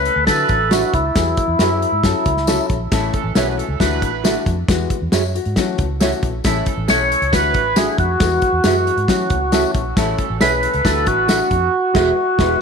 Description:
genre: uptempo 1960s-style soul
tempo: 136 BPM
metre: 4/4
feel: straight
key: A major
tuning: A4 = 439 Hz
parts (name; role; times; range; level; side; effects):
- percussive tonewheel organ; melody; 0.0-2.7, 6.9-12.6 s; E4 to C#5; -18 LUFS; equal; slow rotary speaker, tape echo
- warm upright piano; accompaniment; 0.0-12.5 s; E3 to C#5; -23 LUFS; left 11 dB; none
- vintage muted fingered electric bass; bass; 0.0-12.5 s; E1 to F#3; -22 LUFS; right 1 dB; none
- clear horn section; second line; 0.1-11.5 s; C#3 to B4; -26 LUFS; right 12 dB; none
- natural country drum kit; drums; 0.1-12.5 s; crash cymbal, hi-hat, kick drum, snare drum; -20 LUFS; equal; none
- tambourine; percussion; 0.3-11.4 s; none; -31 LUFS; left 14 dB; none
- mellow electric guitar; stabs; 0.7-12.5 s; F#4 to E5; -24 LUFS; right 12 dB; wide subtle chorus
room: moderate echo chamber reverb, RT60 1.5 s, small room ambience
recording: 1960s-style stereo with parts hard left and right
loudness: -15 LUFS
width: side -6 dB against mid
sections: 0.0-12.6 A section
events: band accent 11.7-12.6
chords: 0.3 Dadd9; 1.2 Eadd9; 2.0 F#m7; 2.9 A; 3.8 Dadd9; 4.7 Eadd9; 5.6 F#m7; 6.4 A; 7.3 Dadd9; 8.2 Eadd9; 9.1 F#m7; 10.0 A; 10.8 Dadd9; 11.7 Eadd9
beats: 0.28 0.72 | 1.16 1.60 2.04 2.48 | 2.92 3.36 3.80 4.24 | 4.68 5.12 5.56 6.00 | 6.45 6.89 7.33 7.77 | 8.21 8.65 9.09 9.53 | 9.97 10.41 10.85 11.29 | 11.73 12.17 12.61

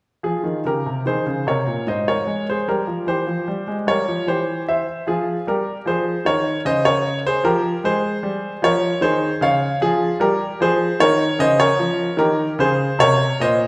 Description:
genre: classical, baroque-style suite movement for grand piano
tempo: 75 BPM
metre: 3/4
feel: rubato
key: F minor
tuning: A4 = 440 Hz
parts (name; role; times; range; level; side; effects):
- clear grand piano; solo; 0.2-13.7 s; Ab2 to F5; -20 LUFS; equal; none
room: wet recital hall reverb, RT60 1.4 s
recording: heard from further back in the room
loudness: -20 LUFS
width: mono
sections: 0.2-13.7 A section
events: none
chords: 0.2 Fm; 1.8 Abadd9; 2.6 C7; 5.1 Fm; 6.7 Bbm/Db; 7.4 Fm; 9.8 Eb13; 11.4 Bbm/Db; 12.2 Eb7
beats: | 0.22 1.04 1.85 | 2.65 3.45 4.26 | 5.06 5.86 6.65 | 7.44 8.23 9.02 | 9.81 10.60 11.39 | 12.19 12.99

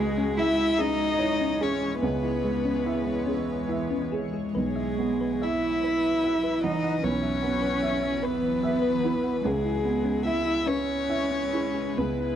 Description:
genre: neoclassical piano and strings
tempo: 48 BPM (dotted quarters)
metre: 6/8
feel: uneven beats, rubato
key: unclear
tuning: A4 = 440 Hz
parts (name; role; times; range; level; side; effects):
- dark violin; melody; 0.0-12.4 s; G#4 to E5; -30 LUFS; left 6 dB; none
- dark cello; second line; 0.0-12.4 s; G#3 to E4; -28 LUFS; right 3 dB; none
- dark grand piano; accompaniment; 0.0-12.4 s; B1 to E5; -30 LUFS; right 4 dB; none
- granular cloud pad; sustained chords; 0.0-12.4 s; E3 to C#5; -34 LUFS; left 3 dB; built-in reverb, phaser
- thumb-piano-like synth pluck; arpeggios; 0.2-12.3 s; C#4 to F#5; -35 LUFS; left 5 dB; chorus, slapback echo
room: small room ambience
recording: dry, close 1970s-style studio recording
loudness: -24 LUFS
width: side -10 dB against mid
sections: 0.0-12.4 A section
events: none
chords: 0.0 C#m7; 4.5 Bsus4; 9.4 C#m7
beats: 0.79 | 2.02 3.27 | 4.54 5.83 | 7.03 8.23 | 9.44 10.67 | 11.98

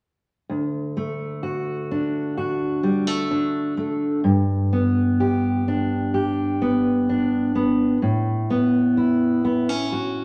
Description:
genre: folk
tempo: 64 BPM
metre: 4/4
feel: straight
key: D major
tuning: A4 = 440 Hz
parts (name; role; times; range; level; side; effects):
- fingerpicked steel-string acoustic guitar; accompaniment; 0.5-10.2 s; D2 to G4; -22 LUFS; equal; none
room: wet large studio reverb, RT60 1.3 s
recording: none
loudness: -22 LUFS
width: mono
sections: 0.5-10.2 A section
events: none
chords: 0.5 D; 4.3 G; 8.0 Aadd9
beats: | 0.49 1.43 2.37 3.31 | 4.26 5.20 6.14 7.09 | 8.03 8.97 9.92

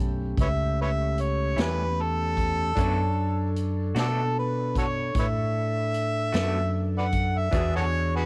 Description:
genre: slow blues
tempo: 50 BPM (dotted quarters)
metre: 12/8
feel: straight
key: unclear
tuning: A4 = 441 Hz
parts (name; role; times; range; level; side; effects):
- bright grand piano; accompaniment; 0.0-8.3 s; C#4 to B5; -43 LUFS; equal; cassette tape
- mellow tonewheel organ; sustained chords; 0.0-8.3 s; A3 to A4; -37 LUFS; equal; slow rotary speaker, cassette tape
- fingered electric bass; bass; 0.0-8.3 s; B1 to B2; -30 LUFS; equal; none
- warm harmonica; melody; 0.4-8.3 s; D4 to F#5; -31 LUFS; equal; overdrive, cassette tape
- swinging big-band drum kit; drums; 0.4-7.7 s; hi-hat, kick drum, snare drum; -32 LUFS; equal; cassette tape
- electric guitar through a small old amp; accompaniment; 1.6-7.8 s; A2 to G#4; -37 LUFS; equal; tremolo, cassette tape
room: studio ambience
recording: home recording on cassette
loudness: -26 LUFS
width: mono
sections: 0.0-8.3 A section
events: none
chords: 0.0 A7; 2.8 Bm7; 7.5 E7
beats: 0.37 1.57 | 2.76 3.96 5.15 6.34 | 7.53

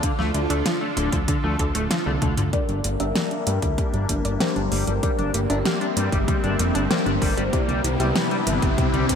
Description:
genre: synthwave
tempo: 96 BPM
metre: 4/4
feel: straight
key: unclear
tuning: A4 = 437 Hz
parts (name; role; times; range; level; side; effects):
- phased analog pad; sustained chords; 0.0-9.2 s; C3 to A4; -28 LUFS; left 1 dB; phaser, chorus, sidechain pumping
- analog pluck; arpeggios; 0.0-9.2 s; C3 to A4; -30 LUFS; right 3 dB; chorus, ping-pong delay
- clean electric guitar; riff; 0.0-9.1 s; C3 to D4; -30 LUFS; left 4 dB; analog chorus, low-pass filter, ping-pong delay
- electronic kick drum; drums; 0.0-9.2 s; none; -24 LUFS; equal; overdrive
- pop drum kit; drums; 0.0-9.2 s; hi-hat, snare drum, toms; -27 LUFS; left 1 dB; overdrive
- fat analog bass; bass; 0.2-9.2 s; D1 to G2; -25 LUFS; equal; none
- FM electric piano with soft pad layer; stabs; 2.5-9.2 s; D4 to E5; -28 LUFS; left 3 dB; chorus, phaser, vintage 12-bit sampler grit, low-pass filter, ping-pong delay
- riser; sound effects; 4.3-9.2 s; none; -32 LUFS; right 1 dB; none
room: moderate plate reverb, RT60 2.7 s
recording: bright 1980s-style digital production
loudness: -20 LUFS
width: side -7 dB against mid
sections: 0.0-2.5 A section; 2.5-9.2 B section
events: drum fill 2.2-2.5; filter sweep on FM electric piano 2.5-9.2; filter sweep on clean electric guitar 2.5-9.2; riser 4.3-9.2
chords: 0.0 Dm; 2.5 Gm; 7.5 Cadd9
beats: | 0.03 0.66 1.28 1.91 | 2.53 3.16 3.78 4.41 | 5.03 5.66 6.28 6.91 | 7.53 8.16 8.78

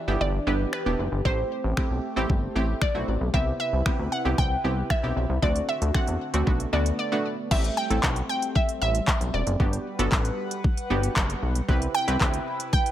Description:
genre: dance-pop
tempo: 115 BPM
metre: 4/4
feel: straight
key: unclear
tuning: A4 = 439 Hz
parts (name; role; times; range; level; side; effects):
- glassy wavetable pluck; melody; 0.0-12.9 s; B4 to G5; -29 LUFS; right 1 dB; chorus, ping-pong delay
- chorused pulse-width pad; sustained chords; 0.0-12.9 s; C3 to F#5; -34 LUFS; equal; sidechain pumping
- punchy chord stab; accompaniment; 0.1-12.9 s; A3 to B4; -30 LUFS; right 2 dB; chorus, sidechain pumping
- chorused synth bass; bass; 0.1-12.4 s; E1 to E2; -26 LUFS; equal; sidechain pumping
- smooth R&B drum kit; drums; 0.7-12.9 s; crash cymbal, finger snaps, handclaps, hi-hat, kick drum; -25 LUFS; equal; overdrive
room: digital ambience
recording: none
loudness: -23 LUFS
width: side -12 dB against mid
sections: 0.0-7.5 A section; 7.5-12.9 B section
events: break 7.0-7.5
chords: 0.0 Em7; 1.3 Am7; 3.3 Cmaj7; 5.4 D7; 6.5 Bm7; 7.5 Am7; 9.6 Gmaj7; 11.7 Cmaj7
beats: 0.21 0.73 | 1.25 1.77 2.29 2.82 | 3.34 3.86 4.38 4.90 | 5.42 5.95 6.47 6.99 | 7.51 8.03 8.55 9.08 | 9.60 10.12 10.64 11.16 | 11.69 12.21 12.73

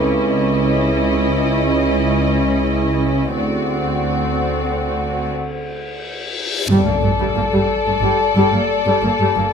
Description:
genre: cinematic, suspense film score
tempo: 90 BPM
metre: 5/4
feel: straight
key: unclear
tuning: A4 = 435 Hz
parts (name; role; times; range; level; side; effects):
- muted studio violin section; melody; 0.0-9.5 s; D5 to D#5; -26 LUFS; left 2 dB; none
- muted studio violin section; second line; 0.0-9.5 s; E4 to A4; -24 LUFS; left 3 dB; none
- muted studio viola section; accompaniment; 0.0-9.4 s; G3 to C#4; -21 LUFS; equal; none
- glass harmonica; sustained chords; 0.0-9.5 s; C#4 to A5; -23 LUFS; left 2 dB; none
- muted studio cello section; bass; 0.0-9.4 s; C#2 to G2; -23 LUFS; right 3 dB; none
- muted studio double bass section; bass; 0.0-9.4 s; G1 to D2; -24 LUFS; right 3 dB; none
- vibraphone with soft mallets; texture; 0.0-9.5 s; B4 to D6; -27 LUFS; left 3 dB; none
- reverse cymbal and impact; sound effects; 5.5-9.5 s; none; -26 LUFS; left 2 dB; none
room: light reverb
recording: close, detailed microphones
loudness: -15 LUFS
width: side -6 dB against mid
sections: 0.0-6.7 A section; 6.7-9.5 B section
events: break 5.4-6.7; reverse cymbal 5.5-6.7; impact 6.7-9.5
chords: 0.0 C#madd9; 3.4 D7; 6.7 Gsus2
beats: | 0.02 0.69 1.36 2.02 2.69 | 3.36 4.02 4.69 5.36 6.02 | 6.69 7.36 8.02 8.69 9.36

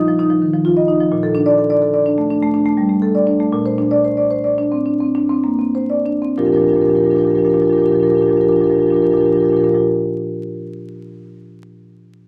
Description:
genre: classical, contemporary piece for solo marimba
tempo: 92-132 BPM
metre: 5/4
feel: rubato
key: Bb major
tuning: A4 = 440 Hz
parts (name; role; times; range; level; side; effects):
- marimba with medium hard mallets; solo; 0.0-9.8 s; Bb2 to Eb5; -16 LUFS; equal; none
room: light reverb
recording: vinyl crackle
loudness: -16 LUFS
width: mono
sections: 0.0-6.4 A section; 6.4-9.5 B section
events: slowing down 1.1-6.4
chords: 0.0 F7sus4/Bb; 1.1 Bbmaj7; 3.5 Bbadd9; 6.4 Bb6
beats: 0.20 0.66 | 1.11 1.58 2.05 2.54 3.02 | 3.53 4.05 4.58 5.14 5.74 | 6.38 7.00 7.62 8.25 8.88

